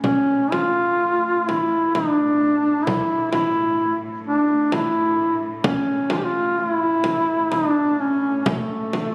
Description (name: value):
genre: caucasian folk, Caucasian lament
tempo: 64 BPM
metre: 3/4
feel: rubato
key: unclear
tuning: A4 = 443 Hz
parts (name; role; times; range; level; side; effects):
- mellow duduk; melody; 0.0-9.1 s; A3 to G4; -21 LUFS; equal; none
- warm studio cello section; drone; 0.0-9.1 s; A2; -37 LUFS; equal; none
- frame drum; percussion; 0.0-9.1 s; none; -28 LUFS; equal; none
room: moderate church reverb, RT60 3.2 s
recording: recorded on a phone in the room, studio reverb, compression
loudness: -21 LUFS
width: mono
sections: 0.0-9.1 A section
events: none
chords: none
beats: | 0.04 1.01 1.95 | 2.87 3.80 4.73 | 5.65 6.58 7.52 | 8.46